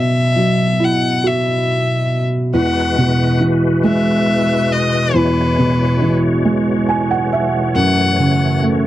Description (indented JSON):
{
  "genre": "pop",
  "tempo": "46 BPM (dotted quarters)",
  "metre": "6/8",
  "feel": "straight",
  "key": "E major",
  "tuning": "A4 = 443 Hz",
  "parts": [
    { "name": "rich violin", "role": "melody", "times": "0.0-8.6 s", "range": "B4 to F#5", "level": "-19 LUFS", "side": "left 3 dB", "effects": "none" },
    { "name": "felt-muted upright piano", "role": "accompaniment", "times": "0.0-8.9 s", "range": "E2 to G#5", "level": "-15 LUFS", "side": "right 1 dB", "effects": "none" },
    { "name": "bright tonewheel organ", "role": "sustained chords", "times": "2.5-8.9 s", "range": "E3 to C#5", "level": "-21 LUFS", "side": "left 2 dB", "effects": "chorus vibrato, fast rotary speaker" }
  ],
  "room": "little or no reverb",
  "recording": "dry, close 1970s-style studio recording",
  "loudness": "-13 LUFS",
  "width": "side -14 dB against mid",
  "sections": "0.0-8.9 A section",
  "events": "felt piano fill 6.4-7.7",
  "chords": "0.0 Bsus4; 2.5 Eadd9; 7.7 F#m7"
}